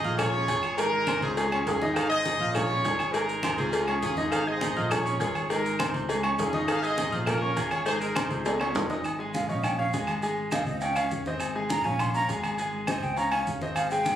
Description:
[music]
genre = latin, salsa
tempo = 203 BPM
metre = 4/4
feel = straight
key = Ab major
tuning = A4 = 439 Hz
[part]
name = clear trumpet section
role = melody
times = 0.0-8.9 s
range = Db4 to G5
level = -28 LUFS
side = equal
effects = none
[part]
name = bright concert grand piano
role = accompaniment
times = 0.0-14.2 s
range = Ab3 to Ab6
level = -31 LUFS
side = left 1 dB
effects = none
[part]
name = fingered electric bass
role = bass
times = 0.0-14.1 s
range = Ab1 to Db2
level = -34 LUFS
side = right 1 dB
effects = none
[part]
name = congas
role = percussion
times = 0.0-14.2 s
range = none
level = -36 LUFS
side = equal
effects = none
[part]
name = cowbell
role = percussion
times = 0.0-8.9 s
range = none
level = -34 LUFS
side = left 2 dB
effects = none
[part]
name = maracas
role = percussion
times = 0.0-14.2 s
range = none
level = -45 LUFS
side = right 2 dB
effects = none
[part]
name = agogo bells and timbales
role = percussion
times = 0.2-14.2 s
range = none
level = -33 LUFS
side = right 1 dB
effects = none
[part]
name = claves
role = percussion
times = 0.2-13.9 s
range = none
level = -39 LUFS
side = right 1 dB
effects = none
[part]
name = breathy mellow silver concert flute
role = melody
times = 9.3-14.2 s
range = Eb5 to C6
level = -29 LUFS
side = right 1 dB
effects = none
[sound]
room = wet large studio reverb, RT60 1.3 s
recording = recorded on a phone in the room, club reverb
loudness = -25 LUFS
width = side -10 dB against mid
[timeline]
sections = 0.0-9.0 A section; 9.0-14.2 B section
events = drum fill 8.5-9.0; flute solo 9.0-14.2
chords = 0.2 Bbm7; 0.8 Ab; 1.4 Db; 2.0 Ab; 2.6 Bbm7; 3.1 Ab; 3.7 Db; 4.3 Ab; 4.9 Bbm7; 5.5 Ab; 6.1 Db; 6.7 Ab; 7.3 Bbm7; 7.9 Ab; 8.5 Db; 9.0 Db6/Ab; 10.2 Ab; 10.8 Db; 11.4 Ab; 12.0 Bbm7; 12.6 Ab; 13.2 Db

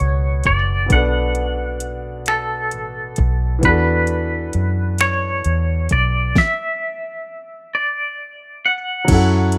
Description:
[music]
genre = slow six-eight R&B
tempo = 44 BPM (dotted quarters)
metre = 6/8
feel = straight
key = unclear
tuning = A4 = 438 Hz
[part]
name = twangy electric guitar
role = melody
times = 0.0-9.6 s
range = A4 to F#5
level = -23 LUFS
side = equal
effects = tremolo, slapback echo
[part]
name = clear baby grand piano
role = accompaniment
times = 0.0-9.6 s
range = B2 to F#5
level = -26 LUFS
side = equal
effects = none
[part]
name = vintage muted fingered electric bass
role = bass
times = 0.0-9.6 s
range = F#1 to F#2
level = -22 LUFS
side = equal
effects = none
[part]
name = smooth R&B drum kit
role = drums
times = 0.4-9.6 s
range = crash cymbal, finger snaps, hi-hat, kick drum, snare drum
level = -22 LUFS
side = equal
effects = overdrive
[sound]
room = little or no reverb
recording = rough home demo mix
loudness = -19 LUFS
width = mono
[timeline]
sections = 0.0-9.1 A section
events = stop 6.4-9.1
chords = 0.0 Bm7; 3.6 E9sus4

